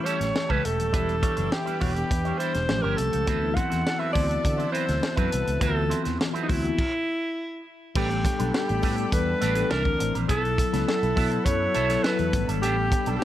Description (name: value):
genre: polished 1980s jazz-funk pop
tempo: 103 BPM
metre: 4/4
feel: straight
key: unclear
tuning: A4 = 440 Hz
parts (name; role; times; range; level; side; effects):
- breathy alto saxophone; melody; 0.0-13.2 s; D#4 to F#5; -28 LUFS; equal; none
- mellow tine electric piano; accompaniment; 0.0-13.2 s; E3 to C5; -30 LUFS; left 4 dB; medium stereo tremolo, analog chorus
- lush unison pad; sustained chords; 0.0-13.2 s; A4 to D6; -38 LUFS; equal; chorus, phaser
- electric guitar with an envelope filter; riff; 0.0-13.2 s; F#3 to C#5; -33 LUFS; right 7 dB; analog chorus
- tight funk drum kit; drums; 0.1-13.2 s; crash cymbal, hi-hat, kick drum, snare drum; -28 LUFS; equal; none
- fretless electric bass; bass; 0.2-13.2 s; D#1 to D3; -28 LUFS; equal; lush chorus
room: studio reverb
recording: none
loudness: -22 LUFS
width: side -12 dB against mid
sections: 0.0-8.0 A section; 8.0-13.2 B section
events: stop 6.8-8.0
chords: 0.0 A7; 0.9 Em7; 2.7 A7alt; 3.3 D13; 8.0 A9sus4; 9.7 C9; 10.3 B7sus4; 12.3 A9sus4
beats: 0.35 | 0.94 1.52 2.11 2.69 | 3.28 3.86 4.45 5.03 | 5.62 6.20 6.79 7.37 | 7.96 8.54 9.12 9.71 | 10.29 10.88 11.46 12.05 | 12.63 13.21